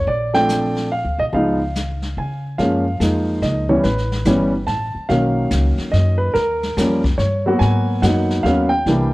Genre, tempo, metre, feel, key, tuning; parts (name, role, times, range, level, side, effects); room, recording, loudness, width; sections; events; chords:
jazz piano trio; 143 BPM; 3/4; swing 64% on 8ths; F# major; A4 = 440 Hz
warm grand piano; melody; 0.0-9.1 s; D#3 to A5; -18 LUFS; equal
upright bass; bass; 0.0-9.1 s; G1 to Db3; -21 LUFS; equal
jazz brush drum kit; drums; 0.1-9.1 s; brushed snare drum, hi-hat, kick drum, snare drum; -26 LUFS; left 1 dB
light reverb; worn, warbling old tape, cassette tape, warbly pitch drift; -16 LUFS; side -20 dB against mid
0.0-2.6 A section; 2.6-9.1 B section
0.1 Bbmaj7; 1.3 Db; 2.6 F#maj7; 3.9 A7sus2; 5.1 Bmaj7; 6.4 D#7; 7.6 G#m7